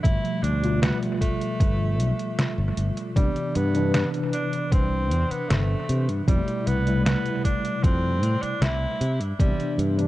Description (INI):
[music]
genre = vaporwave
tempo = 77 BPM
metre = 4/4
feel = straight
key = C major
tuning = A4 = 440 Hz
[part]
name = bright tenor saxophone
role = melody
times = 0.0-9.8 s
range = G3 to E4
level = -30 LUFS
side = equal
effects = tape echo
[part]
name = mellow tine electric piano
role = accompaniment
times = 0.0-10.1 s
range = B2 to B4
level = -27 LUFS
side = equal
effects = medium stereo tremolo, analog chorus, analog delay
[part]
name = fingered electric bass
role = bass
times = 0.0-10.1 s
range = G1 to C3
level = -24 LUFS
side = equal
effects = none
[part]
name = electronic kick drum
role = drums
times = 0.0-9.6 s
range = none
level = -22 LUFS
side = equal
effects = vintage 12-bit sampler grit
[part]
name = detuned 8-bit digital drum machine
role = drums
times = 0.1-10.1 s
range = hi-hat, snare drum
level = -28 LUFS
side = equal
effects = vintage 12-bit sampler grit, analog delay
[sound]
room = light reverb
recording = echo-heavy mix, cassette tape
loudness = -21 LUFS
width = side -16 dB against mid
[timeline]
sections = 0.0-10.1 A section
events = none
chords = 0.0 G9; 3.2 Cmaj9; 6.3 Fmaj9#11; 9.0 Cmaj9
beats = | 0.05 0.83 1.61 2.39 | 3.17 3.94 4.72 5.50 | 6.28 7.06 7.84 8.62 | 9.40